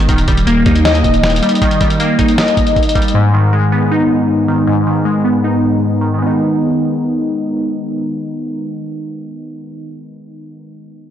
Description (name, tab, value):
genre	hip hop, trap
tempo	157 BPM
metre	4/4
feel	half-time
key	G# harmonic minor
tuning	A4 = 440 Hz
part	glassy digital keys	accompaniment	0.0-11.1 s	G#2 to D#5	-14 LUFS	left 1 dB	chorus, low-pass filter
part	long sustained 808-style bass	bass	0.0-1.4 s	D#1 to D#2	-15 LUFS	right 1 dB	none
part	dusty soul sampler-style drum kit	drums	0.1-3.1 s	finger snaps, hi-hat, kick drum, snare drum	-15 LUFS	equal	soft clipping on snare
room	light reverb, digital ambience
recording	blown-out, overdriven recording, overdrive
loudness	-11 LUFS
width	side -10 dB against mid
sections	0.1-6.2 A section; 6.2-9.3 B section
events	filter sweep on synth keys 0.1-6.2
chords	0.1 D#; 3.1 G#m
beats	| 0.09 0.47 0.85 1.23 | 1.62 2.00 2.38 2.76 | 3.15 3.53 3.91 4.29 | 4.67 5.06 5.44 5.82 | 6.20 6.58 6.97 7.35 | 7.73 8.11 8.49 8.88